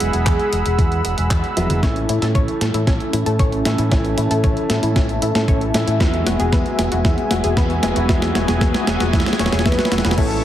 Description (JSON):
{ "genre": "italo disco", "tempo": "115 BPM", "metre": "4/4", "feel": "straight", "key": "E major", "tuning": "A4 = 439 Hz", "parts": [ { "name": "wide unison lead", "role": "melody", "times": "0.0-1.3, 9.4-10.4 s", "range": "G#4 to C#5", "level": "-24 LUFS", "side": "equal", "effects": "lush chorus, digital delay" }, { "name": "warm analog pad", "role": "sustained chords", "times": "0.0-10.4 s", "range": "B3 to E6", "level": "-23 LUFS", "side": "equal", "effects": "chorus, tremolo" }, { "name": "bright grand piano", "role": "stabs", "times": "0.0-10.4 s", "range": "E3 to E4", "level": "-26 LUFS", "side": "right 1 dB", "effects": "low-pass filter, ping-pong delay" }, { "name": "fingered electric bass with an envelope filter", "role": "bass", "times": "0.0-10.4 s", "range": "E1 to A2", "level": "-22 LUFS", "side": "equal", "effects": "none" }, { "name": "clean 12-bit digital drum machine", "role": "drums", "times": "0.0-10.4 s", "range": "crash cymbal, handclaps, hi-hat, snare drum, toms", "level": "-22 LUFS", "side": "equal", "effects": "none" }, { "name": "electronic kick drum", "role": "drums", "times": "0.3-10.3 s", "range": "none", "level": "-19 LUFS", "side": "equal", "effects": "none" }, { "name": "analog pluck", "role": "arpeggios", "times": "1.8-10.2 s", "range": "C#4 to G#5", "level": "-25 LUFS", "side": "left 2 dB", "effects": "chorus, cassette tape, ping-pong delay" } ], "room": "moderate plate reverb, RT60 1.9 s", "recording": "heavily compressed radio sound, multiband compression", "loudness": "-15 LUFS", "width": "side -12 dB against mid", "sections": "0.0-1.8 A section; 1.8-10.2 B section", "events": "drum fill 1.6, 1.8-10.2; filter sweep on analog synth pad 1.8-10.2", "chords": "0.0 Eadd9; 1.8 A; 6.0 Eadd9" }